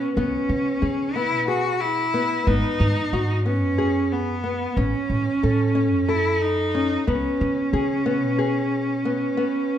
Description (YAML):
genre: contemporary instrumental, chamber music in an uneven meter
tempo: 182 BPM (eighths)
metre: 7/8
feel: straight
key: C# minor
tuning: A4 = 437 Hz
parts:
  - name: rich cello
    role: melody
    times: 0.0-9.8 s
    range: B3 to F#4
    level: -23 LUFS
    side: right 1 dB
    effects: none
  - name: nylon-string guitar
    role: arpeggios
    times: 0.0-9.8 s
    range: B3 to A4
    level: -26 LUFS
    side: left 4 dB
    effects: none
  - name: upright bass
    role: bass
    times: 0.0-9.3 s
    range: G#1 to C#3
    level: -26 LUFS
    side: right 1 dB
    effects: none
room: light reverb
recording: minimal, uncompressed stereo recording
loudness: -20 LUFS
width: side -10 dB against mid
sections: 0.0-9.8 A section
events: none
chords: 0.0 C#m7; 2.5 G#m7; 4.8 A; 7.1 C#5